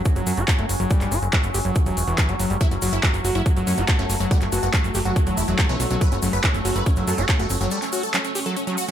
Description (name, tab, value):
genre	psychedelic trance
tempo	141 BPM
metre	4/4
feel	straight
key	F# phrygian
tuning	A4 = 439 Hz
part	overtone-sweeping drone	sustained chords	0.0-8.9 s	F#3 to C#4	-29 LUFS	equal	chorus, built-in reverb, sidechain pumping
part	big-room dance drum kit	drums	0.1-8.9 s	handclaps, hi-hat	-26 LUFS	equal	overdrive, small room reverb
part	electronic kick drum	drums	0.1-7.4 s	none	-22 LUFS	equal	small room reverb
part	egg shaker	percussion	0.1-8.9 s	none	-34 LUFS	left 4 dB	none
part	overdriven acid bass	riff	0.2-8.9 s	E3 to G4	-28 LUFS	moving between left 5 dB and right 4 dB	distortion, auto-pan, sidechain pumping, tape echo
part	plucky analog bass	bass	0.2-7.7 s	E1 to F#2	-24 LUFS	equal	none
part	supersaw stab	melody	2.6-8.9 s	F#3 to B4	-28 LUFS	right 1 dB	phaser, sidechain pumping, tape echo
part	formant-sweep wobble bass	second line	4.5-6.0 s	B3 to C#4	-37 LUFS	right 4 dB	none
room	light reverb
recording	none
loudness	-19 LUFS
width	side -10 dB against mid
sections	0.0-8.9 A section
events	break 7.7-8.9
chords	0.0 F#5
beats	0.06 0.48 | 0.91 1.33 1.76 2.18 | 2.61 3.03 3.46 3.88 | 4.31 4.74 5.16 5.59 | 6.01 6.44 6.86 7.29 | 7.71 8.14 8.56